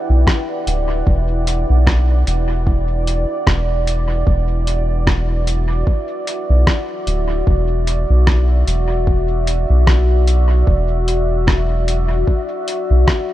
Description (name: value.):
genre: ambient dub.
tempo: 75 BPM.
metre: 4/4.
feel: swing 56% on 16ths.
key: unclear.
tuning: A4 = 440 Hz.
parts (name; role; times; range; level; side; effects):
deep dark ambient pad; sustained chords; 0.0-13.3 s; E4 to G5; -22 LUFS; equal; chorus, built-in reverb.
soft dub sub bass; bass; 0.1-13.1 s; D1 to B1; -15 LUFS; equal; tube saturation.
electronic kick drum; drums; 0.3-13.3 s; none; -16 LUFS; equal; overdrive.
lo-fi sampler-style drum kit; drums; 0.3-13.3 s; hi-hat, rim click; -22 LUFS; equal; overdrive, dub echo.
room: little or no reverb.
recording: none.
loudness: -14 LUFS.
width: side -14 dB against mid.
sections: 0.0-13.3 A section.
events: none.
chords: 0.0 Em7; 4.3 Dadd9.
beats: 0.27 | 1.07 1.87 2.67 3.47 | 4.27 5.07 5.87 6.67 | 7.47 8.27 9.07 9.87 | 10.67 11.47 12.27 13.07.